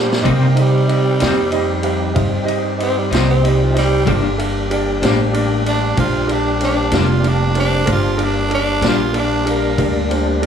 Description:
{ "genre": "slow blues", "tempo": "63 BPM (dotted quarters)", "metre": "12/8", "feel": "straight", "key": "G minor", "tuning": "A4 = 442 Hz", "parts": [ { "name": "growling tenor saxophone", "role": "second line", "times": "0.0-10.1 s", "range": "F3 to F4", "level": "-20 LUFS", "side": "right 3 dB", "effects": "slapback echo" }, { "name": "clear grand piano", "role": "accompaniment", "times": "0.0-10.5 s", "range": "D4 to F5", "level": "-21 LUFS", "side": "right 3 dB", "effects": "none" }, { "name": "bright tonewheel organ", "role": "sustained chords", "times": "0.0-10.5 s", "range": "G3 to G4", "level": "-23 LUFS", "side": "left 5 dB", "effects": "chorus vibrato, slow rotary speaker" }, { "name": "upright bass", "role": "bass", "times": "0.0-10.5 s", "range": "F1 to C3", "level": "-18 LUFS", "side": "equal", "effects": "none" }, { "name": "vintage drum kit", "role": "drums", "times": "0.1-10.5 s", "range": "kick drum, ride cymbal, snare drum", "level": "-23 LUFS", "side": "equal", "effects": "none" }, { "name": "electric guitar at the edge of break-up", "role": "accompaniment", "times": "0.2-9.0 s", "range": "G2 to Eb4", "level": "-22 LUFS", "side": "left 10 dB", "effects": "tremolo" } ], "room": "light reverb, small room ambience", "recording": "small room reverb", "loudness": "-14 LUFS", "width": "side -8 dB against mid", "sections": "0.0-10.5 A section", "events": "drum fill 0.0; tenor saxophone solo 0.0-10.5", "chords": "0.3 Cm; 4.1 Gm", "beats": "| 0.26 1.21 2.16 3.12 | 4.07 5.02 5.97 6.92 | 7.88 8.83 9.78" }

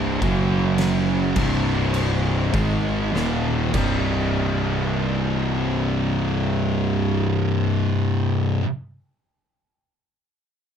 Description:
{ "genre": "stoner and doom metal", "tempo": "49-53 BPM", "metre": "4/4", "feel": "straight", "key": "C phrygian", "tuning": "A4 = 440 Hz", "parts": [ { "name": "cranked stack guitar", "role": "riff", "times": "0.0-8.6 s", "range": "C2 to Eb4", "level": "-27 LUFS", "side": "equal", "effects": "overdrive" }, { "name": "thick fuzz guitar", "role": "riff", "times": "0.0-8.7 s", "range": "C2 to Ab3", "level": "-25 LUFS", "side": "left 7 dB", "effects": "distortion" }, { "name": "thick fuzz guitar", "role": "riff", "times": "0.0-8.7 s", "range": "C2 to Ab3", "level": "-24 LUFS", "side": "right 5 dB", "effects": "distortion" }, { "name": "fuzz picked electric bass", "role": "bass", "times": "0.0-8.6 s", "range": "C1 to Ab1", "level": "-28 LUFS", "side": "equal", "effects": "overdrive" }, { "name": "oversized low-tuned drum kit", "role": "drums", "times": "0.2-4.0 s", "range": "crash cymbal, kick drum, snare drum", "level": "-28 LUFS", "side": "left 1 dB", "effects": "none" } ], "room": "moderate small room reverb, RT60 0.5 s", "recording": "dark, warm production", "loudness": "-19 LUFS", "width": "side -8 dB against mid", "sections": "0.0-4.4 A section; 4.4-9.3 B section", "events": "slowing down 0.0-4.4; drum fill 3.1-4.4", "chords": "0.2 F#5; 1.4 Cm; 3.1 Eb5; 3.7 Cm", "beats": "0.80 1.95 3.14 | 4.36 5.59 6.83 8.06" }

